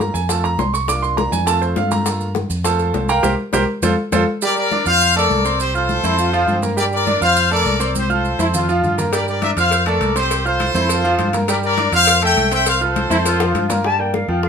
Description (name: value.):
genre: latin, salsa.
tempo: 204 BPM.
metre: 4/4.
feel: straight.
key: F major.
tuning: A4 = 440 Hz.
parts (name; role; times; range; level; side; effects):
clear grand piano; accompaniment; 0.0-14.5 s; F3 to F6; -20 LUFS; right 3 dB; none.
fingered electric bass; bass; 0.0-14.5 s; C2 to G2; -22 LUFS; equal; none.
bongos and cowbell; percussion; 0.0-4.2, 9.1-14.5 s; none; -26 LUFS; left 6 dB; none.
congas; percussion; 0.0-14.5 s; none; -26 LUFS; left 4 dB; none.
maracas; percussion; 0.0-13.8 s; none; -29 LUFS; right 5 dB; none.
bright trumpet section; melody; 4.4-13.7 s; G4 to G5; -17 LUFS; left 2 dB; none.
bright trombone section; second line; 6.0-13.8 s; C4 to F4; -22 LUFS; equal; none.
jazz flute; melody; 13.9-14.5 s; F5 to A5; -21 LUFS; left 4 dB; none.
room: moderate studio reverb, RT60 0.6 s.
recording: minimal, uncompressed stereo recording.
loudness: -15 LUFS.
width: side -6 dB against mid.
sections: 0.0-4.4 A section; 4.4-13.8 B section.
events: grand piano solo 0.0-4.4; band accent 3.2-4.4; drum fill 3.5-4.4, 7.9-9.1, 13.4-13.8.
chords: 0.3 F; 0.9 C7sus4; 1.5 F; 2.1 Gm7; 2.6 F; 3.2 C5; 3.8 F; 4.4 Gm7; 5.0 F; 5.6 Csus4; 6.2 F; 6.8 Gm7; 7.4 F; 7.9 Csus4; 8.5 F; 9.1 Gm7; 9.7 F; 10.3 Csus4; 10.9 F; 11.5 Gm7; 12.1 F; 12.7 Csus4; 13.3 F; 13.8 Gm7.